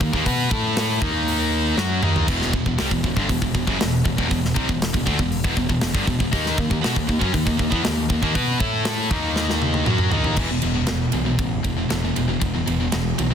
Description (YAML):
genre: heavy metal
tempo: 118 BPM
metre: 4/4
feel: straight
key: unclear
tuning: A4 = 440 Hz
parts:
  - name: high-gain distorted guitar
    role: riff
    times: 0.0-13.3 s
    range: E2 to B4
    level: -24 LUFS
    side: left 11 dB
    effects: distortion
  - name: high-gain distorted guitar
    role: riff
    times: 0.0-13.3 s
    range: E2 to B4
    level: -25 LUFS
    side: right 10 dB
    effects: distortion
  - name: growling picked electric bass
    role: bass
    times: 0.0-13.3 s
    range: E1 to B2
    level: -26 LUFS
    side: equal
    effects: overdrive
  - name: tight metal drum kit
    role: drums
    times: 0.0-13.3 s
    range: crash cymbal, hi-hat, kick drum, ride cymbal, snare drum, toms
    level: -24 LUFS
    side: equal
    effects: none
room: small room reverb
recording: dense, heavily limited modern master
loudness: -19 LUFS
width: side -8 dB against mid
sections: 0.0-10.4 A section; 10.4-13.3 B section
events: drum fill 1.8-2.3, 9.4-10.4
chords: 0.0 D#5; 0.5 A5; 1.0 D#5; 2.3 Em; 6.3 D#5; 8.6 A5; 9.1 D#5; 10.4 E5